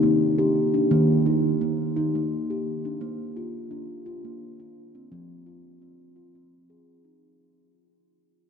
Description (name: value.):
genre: world meditative, meditative tuned percussion.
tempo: 86 BPM.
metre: 3/4.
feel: straight.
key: F dorian.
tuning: A4 = 440 Hz.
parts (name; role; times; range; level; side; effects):
steel tongue drum; solo; 0.0-7.2 s; Eb3 to Ab4; -22 LUFS; equal; none.
room: wet huge ambient reverb, RT60 8.3 s.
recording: dreamy mix soaked in reverb.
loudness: -21 LUFS.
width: side -6 dB against mid.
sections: 0.0-7.2 A section.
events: fade-out 0.0-7.2.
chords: 0.0 Eb; 3.0 Bb; 5.1 Fm.